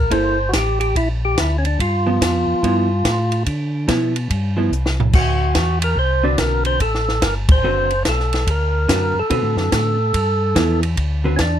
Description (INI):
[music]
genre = soul jazz organ trio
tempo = 144 BPM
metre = 4/4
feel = swing 64% on 8ths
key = G mixolydian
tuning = A4 = 440 Hz
[part]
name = percussive tonewheel organ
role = melody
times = 0.0-11.6 s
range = C#4 to D5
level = -20 LUFS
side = equal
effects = slow rotary speaker, overdrive
[part]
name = mellow tonewheel organ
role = bass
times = 0.0-11.6 s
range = F#1 to D3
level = -20 LUFS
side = equal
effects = slow rotary speaker
[part]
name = vintage hollow-body jazz guitar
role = accompaniment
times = 0.1-11.4 s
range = D3 to B4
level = -21 LUFS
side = right 2 dB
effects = none
[part]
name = compact cocktail drum kit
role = drums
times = 0.1-11.5 s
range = crash cymbal, hi-hat, kick drum, ride cymbal, snare drum, toms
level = -21 LUFS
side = equal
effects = none
[sound]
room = light reverb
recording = close, detailed microphones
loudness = -16 LUFS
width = side -10 dB against mid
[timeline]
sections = 0.0-11.6 A section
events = drum fill 4.7-5.1; band accent 7.4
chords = 0.0 C13; 1.8 G13; 5.1 D13; 10.1 G13; 11.0 D13